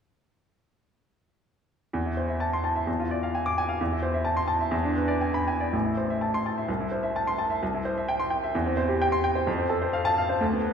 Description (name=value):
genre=classical, virtuoso piano study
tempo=129 BPM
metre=2/4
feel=rubato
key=A minor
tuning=A4 = 440 Hz
part: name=clear baby grand piano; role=solo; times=1.9-10.7 s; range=A1 to D6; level=-24 LUFS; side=equal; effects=none
room=wet church reverb, RT60 3.2 s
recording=recorded in a church or concert hall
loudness=-24 LUFS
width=side -7 dB against mid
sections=1.9-5.7 A section; 5.7-10.7 B section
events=none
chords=1.9 Am/E; 2.9 E7b9; 3.8 Am/E; 4.7 E7; 5.7 Am; 6.7 Am/C; 7.6 C; 8.5 C/E; 9.5 F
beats=| 1.93 2.41 | 2.88 3.34 | 3.80 4.26 | 4.73 5.22 | 5.73 6.21 | 6.68 7.15 | 7.61 8.08 | 8.54 9.01 | 9.47 9.94 | 10.41